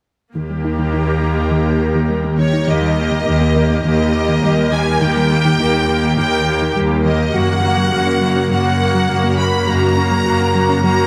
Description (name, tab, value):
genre	cinematic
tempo	103 BPM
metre	4/4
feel	straight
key	unclear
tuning	A4 = 444 Hz
part	rich symphonic cello section	bass	0.3-11.1 s	D#2 to F#2	-22 LUFS	equal	none
part	clear symphonic viola section	accompaniment	0.4-11.1 s	A#3 to G4	-24 LUFS	equal	none
part	airy breathy pad	sustained chords	0.6-11.1 s	C#3 to A#4	-21 LUFS	equal	chorus, phaser
part	soft round pluck	arpeggios	0.4-10.9 s	D#3 to F#4	-24 LUFS	equal	chorus
part	rich symphonic violin section	melody	2.4-11.1 s	C#5 to B5	-22 LUFS	equal	none
room	wet scoring stage reverb, RT60 2.1 s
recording	none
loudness	-16 LUFS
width	mono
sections	0.4-2.7 A section; 2.7-11.1 B section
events	none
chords	0.4 D#; 7.3 F#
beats	| 0.36 0.94 1.52 2.10 | 2.69 3.27 3.85 4.43 | 5.02 5.60 6.18 6.76 | 7.35 7.93 8.51 9.09 | 9.68 10.26 10.84